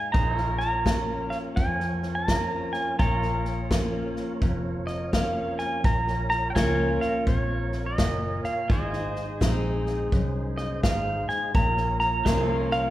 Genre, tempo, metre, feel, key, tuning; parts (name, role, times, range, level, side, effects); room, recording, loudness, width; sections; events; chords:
honky-tonk and classic country; 84 BPM; 4/4; swing 64% on 8ths; Bb minor; A4 = 435 Hz
pedal steel guitar; melody; 0.0-12.9 s; Db5 to Bb5; -28 LUFS; right 1 dB
picked steel-string acoustic guitar; accompaniment; 0.0-12.9 s; F2 to Ab4; -31 LUFS; left 1 dB
pedal steel guitar; sustained chords; 0.0-12.9 s; Eb4 to Db5; -37 LUFS; equal
vintage muted fingered electric bass; bass; 0.1-12.9 s; F1 to F2; -30 LUFS; equal
natural country drum kit; drums; 0.1-12.8 s; hi-hat, kick drum, snare drum; -27 LUFS; equal
tonewheel organ; accompaniment; 0.2-12.9 s; Eb4 to Db5; -37 LUFS; right 2 dB; slow rotary speaker, overdrive, chorus vibrato
wet recital hall reverb, RT60 1.6 s; recorded in a church or concert hall; -23 LUFS; side -14 dB against mid
0.0-5.8 A section; 5.8-12.9 A section
0.1 Bbm; 8.7 Ab; 11.6 Bbm